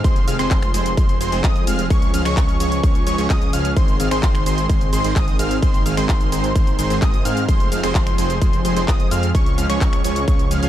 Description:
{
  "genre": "EDM, festival progressive house",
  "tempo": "129 BPM",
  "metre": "4/4",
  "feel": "straight",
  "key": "Ab major",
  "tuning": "A4 = 440 Hz",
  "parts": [
    { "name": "lush unison pad", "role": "sustained chords", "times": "0.0-10.7 s", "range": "Eb3 to Db5", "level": "-27 LUFS", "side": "equal", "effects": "chorus, sidechain pumping" },
    { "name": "wide unison lead", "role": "arpeggios", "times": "0.0-10.7 s", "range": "C6 to F6", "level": "-26 LUFS", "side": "right 1 dB", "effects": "sidechain pumping, tape echo" },
    { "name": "supersaw stab", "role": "riff", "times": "0.0-10.7 s", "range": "Eb3 to F5", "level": "-24 LUFS", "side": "right 1 dB", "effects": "sidechain pumping, tape echo" },
    { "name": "wide detuned saw bass", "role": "bass", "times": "0.0-10.7 s", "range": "F1 to Ab2", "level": "-24 LUFS", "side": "equal", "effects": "chorus, sidechain pumping" },
    { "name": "big-room dance drum kit", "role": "drums", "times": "0.0-10.7 s", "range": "cabasa, finger snaps, handclaps, hi-hat", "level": "-28 LUFS", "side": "left 1 dB", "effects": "none" },
    { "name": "electronic kick drum", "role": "drums", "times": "0.0-10.4 s", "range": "none", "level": "-18 LUFS", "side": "equal", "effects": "none" }
  ],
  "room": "digital ambience",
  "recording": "dark, warm production",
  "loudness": "-16 LUFS",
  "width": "side -12 dB against mid",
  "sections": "0.0-10.7 A section",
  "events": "none",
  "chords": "0.0 Fm; 1.9 Db; 3.8 Ab; 7.5 Fm; 9.3 Db"
}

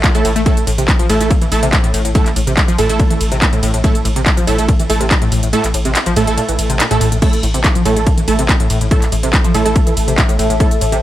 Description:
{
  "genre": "driving peak-time techno",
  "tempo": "142 BPM",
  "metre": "4/4",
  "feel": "straight",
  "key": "unclear",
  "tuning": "A4 = 441 Hz",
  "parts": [
    { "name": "tight sequenced synth", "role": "riff", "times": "0.0-11.0 s", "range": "A2 to A3", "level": "-20 LUFS", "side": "left 1 dB", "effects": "chorus, overdrive, sidechain pumping, digital delay" },
    { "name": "rave stab", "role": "stabs", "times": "0.0-10.7 s", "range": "A3 to A4", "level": "-19 LUFS", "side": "right 3 dB", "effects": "chorus, built-in reverb, cassette tape, sidechain pumping, dub echo" },
    { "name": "saturated sub bass", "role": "bass", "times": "0.0-11.0 s", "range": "A1", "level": "-19 LUFS", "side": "equal", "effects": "tube saturation, sidechain pumping, low-pass filter" },
    { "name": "electronic kick drum", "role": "drums", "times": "0.0-10.7 s", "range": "none", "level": "-14 LUFS", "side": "equal", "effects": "overdrive, studio reverb" },
    { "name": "techno drum kit", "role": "drums", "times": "0.0-11.0 s", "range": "crash cymbal, handclaps, hi-hat, ride cymbal", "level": "-19 LUFS", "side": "equal", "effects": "overdrive, sidechain pumping on hats, studio reverb, sidechain pumping on cymbals" },
    { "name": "warbly tape-like pad", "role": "texture", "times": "8.4-11.0 s", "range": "A4 to A5", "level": "-24 LUFS", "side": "left 1 dB", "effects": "chorus, built-in reverb, sidechain pumping" }
  ],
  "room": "little or no reverb",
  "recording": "none",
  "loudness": "-11 LUFS",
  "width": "side -14 dB against mid",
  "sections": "0.0-11.0 A section",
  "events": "kick drops out 5.5-7.2",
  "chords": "0.0 A5"
}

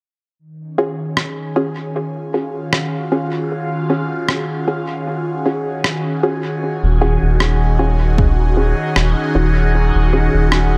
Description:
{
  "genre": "ambient dub",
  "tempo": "77 BPM",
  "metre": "4/4",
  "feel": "swing 54% on 16ths",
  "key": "Eb minor",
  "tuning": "A4 = 440 Hz",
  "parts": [
    { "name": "airy breathy pad", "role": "sustained chords", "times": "0.5-10.8 s", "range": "Eb3 to Ab4", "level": "-23 LUFS", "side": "equal", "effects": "chorus, phaser" },
    { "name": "filtered dub chord stab", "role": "stabs", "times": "0.8-10.4 s", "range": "Db4 to Ab4", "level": "-24 LUFS", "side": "equal", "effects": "chorus, dub echo" },
    { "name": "electronic rim click", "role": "drums", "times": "1.2-10.7 s", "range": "none", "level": "-23 LUFS", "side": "equal", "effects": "small room reverb, dub echo" },
    { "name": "soft dub sub bass", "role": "bass", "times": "6.8-10.8 s", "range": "Eb1", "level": "-17 LUFS", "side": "equal", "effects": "tube saturation" },
    { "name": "electronic kick drum", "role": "drums", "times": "8.2-8.4 s", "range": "none", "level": "-18 LUFS", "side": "equal", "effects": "overdrive, small room reverb" }
  ],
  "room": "moderate spring reverb, RT60 1.9 s, digital ambience",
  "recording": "none",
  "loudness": "-18 LUFS",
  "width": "mono",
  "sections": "0.4-10.8 A section",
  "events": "none",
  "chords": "0.4 Ebm11"
}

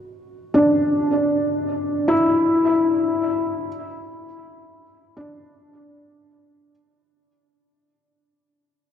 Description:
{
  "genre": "ambient",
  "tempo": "78 BPM",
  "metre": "4/4",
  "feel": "straight",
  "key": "unclear",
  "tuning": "A4 = 439 Hz",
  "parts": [
    { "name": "felt-muted upright piano", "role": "arpeggios", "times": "0.0-6.7 s", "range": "D4 to E4", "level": "-18 LUFS", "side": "left 1 dB", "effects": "diffuse ambient delay" }
  ],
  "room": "wet huge ambient reverb, RT60 8.2 s",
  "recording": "worn, warbling old tape, cassette tape, warbly pitch drift",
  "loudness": "-17 LUFS",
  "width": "side -9 dB against mid",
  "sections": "0.0-6.7 A section",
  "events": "fade-out 0.0-6.7",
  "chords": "none"
}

